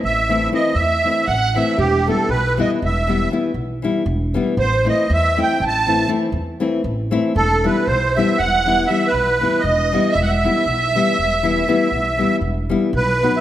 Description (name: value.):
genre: balkan folk, Balkan wedding band.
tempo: 237 BPM (eighths).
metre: 11/8.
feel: straight.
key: E harmonic minor.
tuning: A4 = 439 Hz.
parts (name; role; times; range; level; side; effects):
musette accordion; melody; 0.0-13.4 s; G4 to A5; -19 LUFS; right 2 dB; none.
upright bass; bass; 0.0-13.2 s; E1 to E2; -22 LUFS; equal; none.
nylon-string guitar; accompaniment; 0.3-13.4 s; E3 to F#4; -20 LUFS; left 3 dB; none.
warm violin; second line; 0.8-12.4 s; G4 to A5; -24 LUFS; right 3 dB; none.
room: wet recital hall reverb, RT60 1.7 s.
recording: none.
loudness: -15 LUFS.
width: side -12 dB against mid.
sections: 0.0-12.9 A section.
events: none.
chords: 0.0 Am; 1.8 Em; 4.6 Am; 7.4 Em.